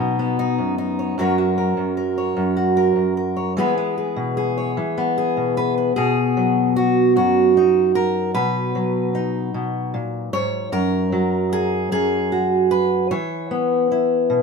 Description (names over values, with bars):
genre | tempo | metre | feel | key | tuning
folk, solo fingerstyle acoustic guitar | 50 BPM (dotted quarters) | 6/8 | straight | B major | A4 = 441 Hz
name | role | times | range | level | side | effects
fingerpicked steel-string acoustic guitar | solo | 0.0-14.4 s | F#2 to C#5 | -18 LUFS | equal | none
room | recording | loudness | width
light reverb | minimal, uncompressed stereo recording | -18 LUFS | side -5 dB against mid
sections
0.0-6.0 A section; 6.0-14.4 B section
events
none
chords
0.0 Badd9; 1.2 F#; 3.6 E; 6.0 B; 10.7 N.C.; 13.1 E5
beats
| 1.19 2.38 | 3.58 4.77 | 5.96 7.15 | 8.34 9.54 | 10.73 11.92 | 13.11 14.30